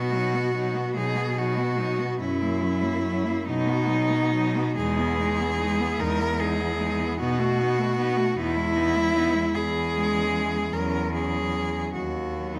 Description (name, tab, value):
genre	classical, lyrical piece for cello ensemble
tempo	44-52 BPM (dotted quarters)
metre	6/8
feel	rubato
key	B major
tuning	A4 = 440 Hz
part	warm cello	melody	0.0-12.6 s	D#4 to A#4	-28 LUFS	equal	none
part	rich cello	second line	0.0-12.6 s	B3 to F#4	-37 LUFS	equal	none
part	rich cello	accompaniment	0.0-12.6 s	F#3 to B3	-33 LUFS	equal	none
part	rich cello	bass	0.0-12.6 s	D#2 to B2	-30 LUFS	equal	none
room	wet recital hall reverb, RT60 1.5 s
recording	none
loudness	-25 LUFS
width	mono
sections	0.0-12.6 A section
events	none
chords	0.0 B; 2.2 F#7; 3.5 B; 4.8 Emaj7; 7.2 B7; 8.4 Emaj7; 9.5 C#m/E; 10.7 F#5/E; 11.9 B/D#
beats	0.97 | 2.21 3.46 | 4.77 5.99 | 7.19 8.36 | 9.55 10.73 | 11.94